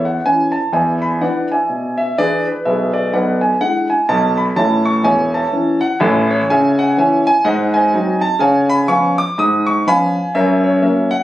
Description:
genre	jazz, stride piano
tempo	125 BPM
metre	4/4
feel	swing 60% on 8ths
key	A major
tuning	A4 = 445 Hz
part	warm concert grand piano	solo	0.0-11.2 s	E1 to D#6	-13 LUFS	equal	none
room	moderate studio reverb, RT60 0.6 s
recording	recorded on a phone in the room, club reverb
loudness	-13 LUFS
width	side -14 dB against mid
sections	0.0-11.2 A section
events	none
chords	0.0 A; 0.7 E7; 2.6 E7/B; 4.6 A; 6.5 C#m; 7.5 G#7; 8.4 C#7; 10.3 F#

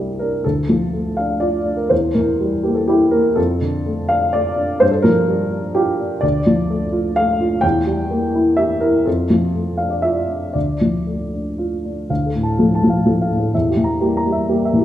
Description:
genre	neoclassical minimalist piano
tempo	114-130 BPM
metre	3/4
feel	rubato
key	D minor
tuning	A4 = 440 Hz
part	dark upright piano	solo	0.0-14.8 s	C2 to Bb5	-15 LUFS	equal	none
room	wet recital hall reverb, RT60 1.6 s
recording	recorded in a church or concert hall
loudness	-15 LUFS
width	side -12 dB against mid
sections	0.4-12.1 A section; 12.1-14.8 B section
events	none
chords	0.4 Dm; 1.9 Edim; 3.4 Dm/F; 4.8 Gm7; 6.2 Dm; 7.6 Edim; 9.1 Dm/F; 10.5 Dm; 13.5 Edim

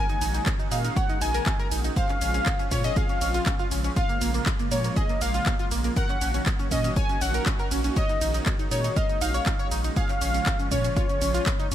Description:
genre	progressive house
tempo	120 BPM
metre	4/4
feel	straight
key	Bb minor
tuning	A4 = 444 Hz
part	warm velvety synth lead	melody	0.0-11.7 s	Db5 to Ab5	-30 LUFS	left 1 dB	chorus, dub echo
part	glassy wavetable pluck	second line	0.0-11.7 s	Db5 to Ab5	-37 LUFS	right 1 dB	chorus, sidechain pumping, dub echo
part	supersaw pad	sustained chords	0.0-11.7 s	Db3 to Gb4	-34 LUFS	right 1 dB	phaser, sidechain pumping
part	tight sequenced synth	arpeggios	0.0-11.7 s	Bb3 to F5	-32 LUFS	right 1 dB	chorus, vintage 12-bit sampler grit, sidechain pumping, dub echo
part	house drum kit	drums	0.1-11.7 s	cabasa, handclaps, hi-hat, ride cymbal	-32 LUFS	equal	sidechain pumping on hats, sidechain pumping on perc, sidechain pumping on cymbals
part	round analog bass	bass	0.2-11.7 s	Bb1 to Bb2	-28 LUFS	equal	sidechain pumping
part	electronic kick drum	drums	0.5-11.6 s	none	-26 LUFS	equal	none
room	little or no reverb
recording	none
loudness	-22 LUFS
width	side -11 dB against mid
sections	0.0-11.7 A section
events	none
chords	0.0 Ab9sus4/Bb; 2.0 Dbmaj7/Bb; 4.0 Bbm7; 6.0 Gb6/Bb; 8.0 Ab9sus4/Bb; 10.0 Bbm7

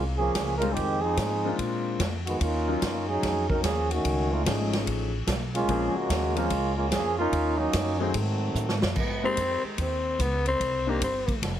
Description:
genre	jazz, big band swing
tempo	146 BPM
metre	4/4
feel	swing 65% on 8ths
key	unclear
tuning	A4 = 439 Hz
part	warm trombone section	second line	0.0-8.8 s	Db3 to Bb4	-27 LUFS	right 1 dB	none
part	upright bass	bass	0.0-11.6 s	F1 to Bb2	-30 LUFS	equal	none
part	swinging big-band drum kit	drums	0.3-11.5 s	crash cymbal, hi-hat, kick drum, ride cymbal, snare drum	-31 LUFS	equal	none
part	clear concert grand piano	accompaniment	0.6-11.0 s	F3 to Bb4	-31 LUFS	left 4 dB	none
part	growling tenor saxophone	melody	9.0-11.4 s	Ab3 to C4	-27 LUFS	left 2 dB	none
part	edgy saxophone section	sustained chords	9.4-10.0 s	Eb3 to G4	-40 LUFS	right 3 dB	none
room	light reverb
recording	heavily compressed radio sound, multiband compression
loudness	-24 LUFS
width	side -10 dB against mid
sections	0.0-9.0 A section; 9.0-11.6 B section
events	trombone section solo 0.0-9.0; drum fill 8.6-9.0; tenor saxophone solo 9.0-11.6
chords	0.0 Gbmaj9 (rootless); 0.8 Fm7; 2.4 Ebm7; 4.0 F7alt; 5.7 Bbm7; 7.3 Ebm7; 8.1 Ab7b9; 9.0 Abmaj7; 10.6 Cm9

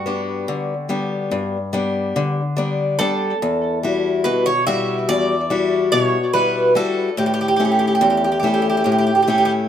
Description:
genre	greek folk, Greek bouzouki band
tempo	143 BPM (eighths)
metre	9/8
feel	straight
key	unclear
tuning	A4 = 440 Hz
part	Greek bouzouki	melody	0.0-9.5 s	F#4 to E5	-19 LUFS	right 3 dB	tape echo
part	picked old ladder-braced acoustic guitar	accompaniment	0.0-9.7 s	E2 to F#4	-19 LUFS	left 3 dB	none
room	moderate studio reverb, RT60 0.6 s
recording	none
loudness	-16 LUFS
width	side -9 dB against mid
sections	0.0-9.7 A section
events	none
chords	0.0 G; 3.4 Emadd9; 7.2 A

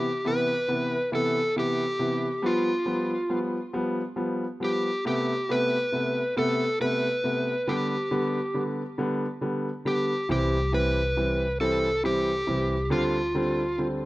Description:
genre	six-eight pop ballad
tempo	46 BPM (dotted quarters)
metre	6/8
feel	straight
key	C major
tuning	A4 = 440 Hz
part	overdriven slide guitar	melody	0.0-13.9 s	F4 to B4	-27 LUFS	equal	none
part	warm concert grand piano	accompaniment	0.0-14.0 s	C3 to C4	-28 LUFS	equal	none
part	upright bass	bass	10.3-14.1 s	C2 to D2	-30 LUFS	equal	none
room	light reverb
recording	rough home demo mix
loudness	-24 LUFS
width	side -18 dB against mid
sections	0.0-14.1 A section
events	none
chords	0.0 Cmaj7; 2.4 G7; 5.1 Amadd9; 7.7 G; 10.3 C; 12.9 D7sus4

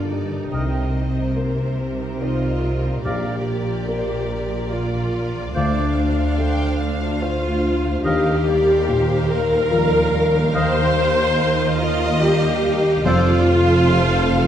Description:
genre	cinematic, emotional film score for orchestra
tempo	72 BPM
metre	3/4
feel	rubato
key	unclear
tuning	A4 = 440 Hz
part	warm symphonic violin section	melody	0.0-14.5 s	G4 to G5	-31 LUFS	left 1 dB	none
part	rich symphonic violin section	second line	0.0-14.5 s	A4 to F5	-29 LUFS	left 1 dB	none
part	dark grand piano	accompaniment	0.0-14.5 s	Bb1 to D5	-25 LUFS	left 1 dB	none
part	rich symphonic viola section	accompaniment	0.0-14.5 s	D4 to C5	-23 LUFS	right 2 dB	none
part	mellow French horn section	sustained chords	0.0-14.5 s	D4 to C5	-24 LUFS	left 4 dB	none
part	concert harp	arpeggios	0.0-14.5 s	G2 to A5	-28 LUFS	left 5 dB	none
part	clear symphonic double bass section	bass	0.0-14.5 s	F1 to Eb2	-25 LUFS	right 3 dB	none
part	rich symphonic cello section	bass	0.0-14.5 s	D2 to C3	-26 LUFS	right 2 dB	none
part	bright clarinet	second line	0.5-13.4 s	A4 to C5	-31 LUFS	equal	none
part	mellow large flute ensemble	second line	0.5-13.5 s	F5 to G5	-32 LUFS	equal	none
part	warm oboe	second line	0.5-13.4 s	C5 to Eb5	-31 LUFS	right 2 dB	none
room	wet recital hall reverb, RT60 1.7 s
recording	dark, warm production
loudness	-17 LUFS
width	side -10 dB against mid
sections	0.0-14.5 A section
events	none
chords	0.0 Gmadd9; 0.5 Cm7; 3.0 Bb; 5.6 Dm7; 8.1 Ebadd9; 13.1 F

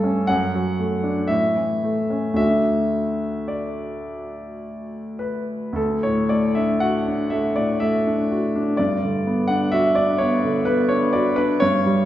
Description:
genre	classical, romantic nocturne for solo piano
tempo	51-65 BPM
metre	3/4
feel	rubato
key	D major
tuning	A4 = 440 Hz
part	clear concert grand piano	solo	0.0-12.1 s	D2 to F#5	-19 LUFS	equal	none
room	wet recital hall reverb, RT60 1.7 s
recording	heard from further back in the room, nothing above 7.5 kHz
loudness	-19 LUFS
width	side -13 dB against mid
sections	0.0-5.8 A section; 5.8-12.1 A section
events	none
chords	0.3 D/F#; 1.3 A; 2.4 D; 8.8 Gmaj7

